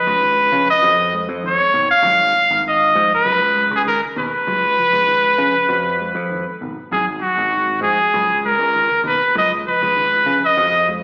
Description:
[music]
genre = afrobeat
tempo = 98 BPM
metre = 4/4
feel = straight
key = G# dorian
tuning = A4 = 441 Hz
[part]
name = brilliant trumpet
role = melody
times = 0.0-10.9 s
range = F#4 to E#5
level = -14 LUFS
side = equal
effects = slapback echo
[part]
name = mellow electric guitar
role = arpeggios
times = 0.0-11.0 s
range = B2 to F#4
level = -32 LUFS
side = equal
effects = slapback echo
[part]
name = picked electric bass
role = bass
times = 0.1-11.0 s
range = G#1 to C#3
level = -25 LUFS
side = equal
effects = none
[sound]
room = light reverb, small room reverb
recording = live gig heard through the venue's PA, recital hall reverb, AM radio sound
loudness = -14 LUFS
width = side -35 dB against mid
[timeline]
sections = 0.0-11.0 A section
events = none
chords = 0.0 G#m7

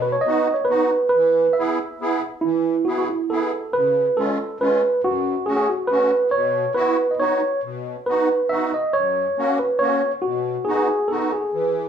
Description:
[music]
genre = alpine folk, alpine dance band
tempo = 139 BPM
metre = 3/4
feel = swing 54% on 8ths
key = E major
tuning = A4 = 440 Hz
[part]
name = tine electric piano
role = melody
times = 0.0-11.9 s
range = E4 to E5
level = -19 LUFS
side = right 2 dB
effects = tape echo
[part]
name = musette accordion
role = accompaniment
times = 0.0-11.9 s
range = F#2 to G#4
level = -24 LUFS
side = right 1 dB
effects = none
[sound]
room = moderate small room ambience, RT60 0.5 s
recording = studio reverb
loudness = -18 LUFS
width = side -8 dB against mid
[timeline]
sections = 0.0-2.4 A section; 2.4-11.9 A section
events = none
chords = 0.0 B; 1.1 E; 3.7 C#7; 5.0 F#m; 6.3 Bsus4; 7.2 B; 8.9 F#; 10.2 B

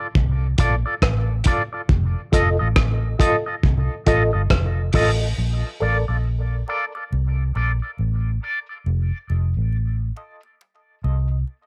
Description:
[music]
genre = dub reggae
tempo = 69 BPM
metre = 4/4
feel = swing 62% on 16ths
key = Bb major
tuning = A4 = 440 Hz
[part]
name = electric guitar with an envelope filter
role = accompaniment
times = 0.0-8.8 s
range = F4 to Eb5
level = -28 LUFS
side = equal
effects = tremolo, high-pass filter, tape echo
[part]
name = vintage muted fingered electric bass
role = bass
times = 0.2-11.4 s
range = F1 to C2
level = -23 LUFS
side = equal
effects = none
[part]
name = cloth-damped thuddy drum kit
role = drums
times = 0.2-5.2 s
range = hi-hat, kick drum, rim click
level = -23 LUFS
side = equal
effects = none
[part]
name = mellow reed electric piano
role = stabs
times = 2.3-11.4 s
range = F4 to Eb5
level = -28 LUFS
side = equal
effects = fast tremolo, high-pass filter, tape echo
[part]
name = congas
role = percussion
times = 5.4-11.7 s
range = none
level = -56 LUFS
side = equal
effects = none
[sound]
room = light reverb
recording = home recording on cassette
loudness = -21 LUFS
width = mono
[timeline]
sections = 0.0-5.4 A section; 5.4-11.7 B section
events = break 0.0-5.4; filter sweep 1.9-11.7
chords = 0.0 Bbmaj7; 1.9 F7; 5.4 Bbmaj7; 8.9 F7

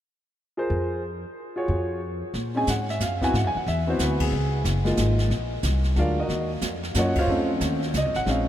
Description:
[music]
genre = jazz piano trio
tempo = 183 BPM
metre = 3/4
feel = swing 64% on 8ths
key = Bb minor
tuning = A4 = 439 Hz
[part]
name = warm grand piano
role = melody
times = 0.6-8.5 s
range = Gb3 to Ab5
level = -25 LUFS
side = equal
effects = none
[part]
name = upright bass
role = bass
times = 0.7-8.5 s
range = Gb1 to Bb2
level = -25 LUFS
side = equal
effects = none
[part]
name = jazz brush drum kit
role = drums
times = 2.3-8.5 s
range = brushed snare drum, hi-hat, kick drum, ride cymbal, snare drum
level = -31 LUFS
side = equal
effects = none
[sound]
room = moderate huge ambient reverb, RT60 7.6 s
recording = in a vast, echoing space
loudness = -22 LUFS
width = side -11 dB against mid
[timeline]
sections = 0.4-2.4 A section; 2.4-8.5 B section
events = band accent 4.2, 7.1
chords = 0.4 Fmadd11; 2.4 Bb7sus2; 3.3 Ab7alt; 4.3 Db69; 5.3 Bb(b13); 6.3 Ebm9; 7.3 F7b13

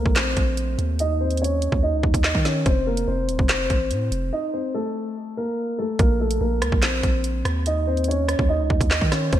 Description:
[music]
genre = hip hop, drill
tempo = 144 BPM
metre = 4/4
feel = half-time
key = unclear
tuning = A4 = 439 Hz
[part]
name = dark concert grand piano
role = melody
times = 0.0-9.4 s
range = A3 to Eb5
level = -24 LUFS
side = equal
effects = low-pass filter
[part]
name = Celtic harp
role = accompaniment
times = 0.0-2.2 s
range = A3 to Eb4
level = -40 LUFS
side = left 3 dB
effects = none
[part]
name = long sustained 808-style bass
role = bass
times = 0.0-9.4 s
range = Eb1 to Eb3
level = -24 LUFS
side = right 1 dB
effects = none
[part]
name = drill drum kit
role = drums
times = 0.1-9.4 s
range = handclaps, hi-hat, kick drum, rim click, snare drum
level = -22 LUFS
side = right 1 dB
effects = vintage 12-bit sampler grit, gated reverb
[sound]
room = light reverb, small room ambience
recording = bright 1980s-style digital production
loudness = -20 LUFS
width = side -12 dB against mid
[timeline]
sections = 0.0-9.4 A section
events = filter sweep on grand piano 0.0-9.4; break 4.3-6.0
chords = 0.0 Bbsus2; 1.0 Dbsus2; 2.7 F; 6.0 Bbsus2; 7.7 Dbsus2

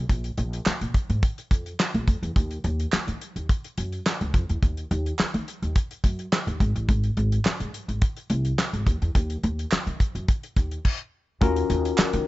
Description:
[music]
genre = early-eighties boogie funk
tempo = 106 BPM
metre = 4/4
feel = straight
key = Eb dorian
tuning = A4 = 440 Hz
[part]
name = upright bass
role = bass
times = 0.0-12.2 s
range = Ab1 to Eb3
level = -26 LUFS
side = equal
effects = none
[part]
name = damped 70s drum kit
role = drums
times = 0.1-12.3 s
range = crash cymbal, handclaps, hi-hat, kick drum, snare drum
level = -24 LUFS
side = equal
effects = none
[part]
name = group handclap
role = percussion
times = 0.7-12.1 s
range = none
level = -32 LUFS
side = right 5 dB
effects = none
[part]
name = mellow tine electric piano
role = accompaniment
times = 11.4-12.3 s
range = Db4 to Bb4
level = -24 LUFS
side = left 6 dB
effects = overdrive, phaser
[sound]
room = small room ambience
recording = nothing above 7.8 kHz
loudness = -23 LUFS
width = side -18 dB against mid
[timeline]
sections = 0.0-11.4 A section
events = none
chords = 0.0 Bb5; 2.4 Ebm; 6.6 N.C.; 11.4 Ebm9

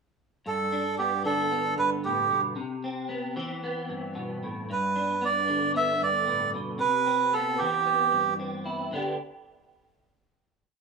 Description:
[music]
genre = highlife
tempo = 114 BPM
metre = 4/4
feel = straight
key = G major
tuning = A4 = 438 Hz
[part]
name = melodica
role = melody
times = 0.5-8.3 s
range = G4 to E5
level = -24 LUFS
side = right 4 dB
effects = cassette tape
[part]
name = clean electric guitar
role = accompaniment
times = 0.5-9.2 s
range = G2 to G4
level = -31 LUFS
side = equal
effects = ensemble chorus, cassette tape
[sound]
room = moderate spring reverb, RT60 1.7 s, studio reverb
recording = home recording on cassette, small room ambience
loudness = -25 LUFS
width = side -4 dB against mid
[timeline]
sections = 0.5-8.9 A section; 8.9-10.8 final chord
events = none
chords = 0.5 Gadd9; 2.6 Cmaj7; 4.7 Gadd9; 6.8 Cmaj7; 8.9 G

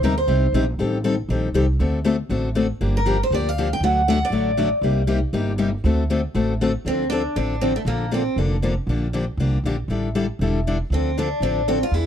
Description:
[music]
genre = acoustic string swing (jazz manouche)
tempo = 237 BPM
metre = 4/4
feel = swing 57% on 8ths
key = D minor from 6.9 s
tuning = A4 = 441 Hz
[part]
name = picked steel-string acoustic guitar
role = melody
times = 0.0-0.6, 3.0-4.7, 6.9-8.4, 10.9-12.1 s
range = A3 to G5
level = -22 LUFS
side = right 1 dB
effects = none
[part]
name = picked steel-string acoustic guitar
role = accompaniment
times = 0.0-12.1 s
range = C3 to A4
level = -23 LUFS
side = left 4 dB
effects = none
[part]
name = upright bass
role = bass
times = 0.0-12.1 s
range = E1 to E2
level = -23 LUFS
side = right 1 dB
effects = none
[sound]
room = studio ambience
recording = dry, close 1970s-style studio recording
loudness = -19 LUFS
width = side -9 dB against mid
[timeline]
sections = 0.0-6.9 A section; 6.9-12.1 B section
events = none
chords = 0.0 Cm; 0.8 Am7b5; 1.8 D7; 2.8 Gm7; 3.8 D; 4.8 Cm7; 5.8 D7; 6.9 Dm7; 7.9 Bbmaj9; 8.9 Gm7/Bb; 9.9 A7sus4; 10.9 Dm7

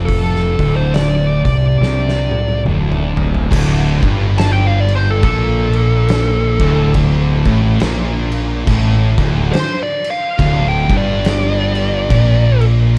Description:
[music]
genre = stoner and doom metal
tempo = 70 BPM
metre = 4/4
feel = swing 59% on 8ths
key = D minor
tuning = A4 = 438 Hz
[part]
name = thick fuzz guitar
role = riff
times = 0.0-13.0 s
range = D2 to C3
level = -21 LUFS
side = equal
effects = distortion
[part]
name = thick fuzz guitar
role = riff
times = 0.0-13.0 s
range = D2 to C3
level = -20 LUFS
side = equal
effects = distortion
[part]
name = fuzz fingered electric bass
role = bass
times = 0.0-13.0 s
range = D1 to C2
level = -21 LUFS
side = equal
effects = overdrive
[part]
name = fuzz lead guitar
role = melody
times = 0.1-12.6 s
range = A4 to A5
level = -22 LUFS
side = equal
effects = wah, distortion, delay
[part]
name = oversized low-tuned drum kit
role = drums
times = 0.1-12.8 s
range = crash cymbal, hi-hat, kick drum, snare drum, toms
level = -22 LUFS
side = equal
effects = none
[part]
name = heavy high-gain guitar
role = riff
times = 3.5-13.0 s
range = D2 to Bb2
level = -28 LUFS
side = equal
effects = distortion
[sound]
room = small room ambience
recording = dark, warm production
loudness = -15 LUFS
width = mono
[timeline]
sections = 0.0-3.5 A section; 3.5-13.0 B section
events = drum fill 1.8-3.5; lead electric guitar solo 3.5-13.0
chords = 0.0 Dm; 3.5 D5

